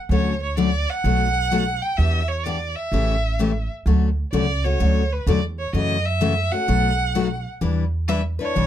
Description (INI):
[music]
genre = acoustic string swing (jazz manouche)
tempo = 128 BPM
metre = 4/4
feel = swing 65% on 8ths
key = D major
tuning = A4 = 437 Hz
[part]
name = rich violin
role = melody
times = 0.1-8.7 s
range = B4 to G5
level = -25 LUFS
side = right 2 dB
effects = none
[part]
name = picked steel-string acoustic guitar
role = accompaniment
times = 0.1-8.7 s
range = B2 to B4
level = -23 LUFS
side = left 6 dB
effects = none
[part]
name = upright bass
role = bass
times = 0.1-8.7 s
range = A1 to F#2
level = -22 LUFS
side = right 1 dB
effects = none
[sound]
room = little or no reverb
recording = close, detailed microphones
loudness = -19 LUFS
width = side -11 dB against mid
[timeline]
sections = 0.0-3.9 A section; 3.9-8.7 B section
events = none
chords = 0.1 Dmaj7; 1.0 B7; 2.0 Em7; 2.9 A7; 3.9 Dmaj7; 5.7 F#m7; 6.7 B7; 7.6 Em7